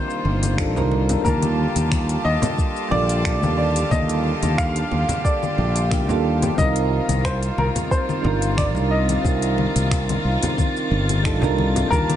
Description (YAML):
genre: sunset chillout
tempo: 90 BPM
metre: 4/4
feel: straight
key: C dorian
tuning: A4 = 440 Hz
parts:
  - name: warm baby grand piano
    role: melody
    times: 0.0-12.2 s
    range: Bb4 to F5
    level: -26 LUFS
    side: equal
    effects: ping-pong delay
  - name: soft electric-piano-like synth keys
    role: accompaniment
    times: 0.0-12.2 s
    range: D3 to A5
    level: -26 LUFS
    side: right 3 dB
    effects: chorus, tremolo, auto-pan, ping-pong delay
  - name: rich chamber string section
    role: sustained chords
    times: 0.0-12.2 s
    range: C3 to A5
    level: -28 LUFS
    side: left 1 dB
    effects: none
  - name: smooth R&B drum kit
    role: drums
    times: 0.1-12.2 s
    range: congas, finger snaps, hi-hat, shaker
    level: -28 LUFS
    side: left 4 dB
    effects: none
  - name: fretless electric bass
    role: bass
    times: 0.2-12.2 s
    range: G1 to Eb2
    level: -22 LUFS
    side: equal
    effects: tube saturation
  - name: congas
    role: percussion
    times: 0.2-12.1 s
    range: none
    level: -28 LUFS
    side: left 1 dB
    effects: none
  - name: electronic kick drum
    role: drums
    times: 0.6-12.1 s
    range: none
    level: -23 LUFS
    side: equal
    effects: none
  - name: wind-like tuned noise texture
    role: texture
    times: 7.2-12.2 s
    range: A6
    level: -33 LUFS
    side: right 1 dB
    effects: built-in reverb
room: light reverb, digital ambience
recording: nothing above 10.4 kHz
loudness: -18 LUFS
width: side -11 dB against mid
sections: 0.0-12.2 A section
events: none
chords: 0.0 Cm11; 1.2 Ebmaj9#11; 6.6 Cm11